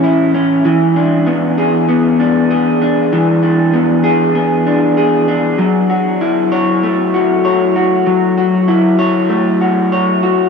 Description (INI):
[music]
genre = dream pop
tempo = 97 BPM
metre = 4/4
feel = straight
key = unclear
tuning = A4 = 440 Hz
[part]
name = electric guitar through a small old amp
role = solo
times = 0.0-10.5 s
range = A2 to C#5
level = -11 LUFS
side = left 1 dB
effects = wide subtle chorus, ping-pong delay
[sound]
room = wet huge ambient reverb, RT60 7.7 s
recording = dreamy mix soaked in reverb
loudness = -11 LUFS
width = side -5 dB against mid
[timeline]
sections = 0.0-10.5 A section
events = none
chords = 0.0 Amaj7; 0.6 E7; 5.6 F#m7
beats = 0.03 | 0.65 1.26 1.88 2.50 | 3.12 3.74 4.36 4.97 | 5.59 6.21 6.83 7.45 | 8.07 8.69 9.30 9.92